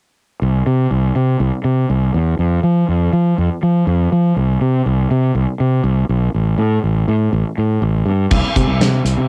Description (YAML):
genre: indie rock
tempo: 122 BPM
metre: 4/4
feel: straight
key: C major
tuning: A4 = 436 Hz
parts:
  - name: fuzz fingered electric bass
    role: bass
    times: 0.4-9.3 s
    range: A1 to F3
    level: -16 LUFS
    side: equal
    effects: overdrive
  - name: loose indie drum kit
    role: drums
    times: 8.3-9.2 s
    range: crash cymbal, hi-hat, kick drum, snare drum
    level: -18 LUFS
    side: equal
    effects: cassette tape
room: little or no reverb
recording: home recording on cassette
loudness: -16 LUFS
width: mono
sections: 0.4-8.3 A section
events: none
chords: none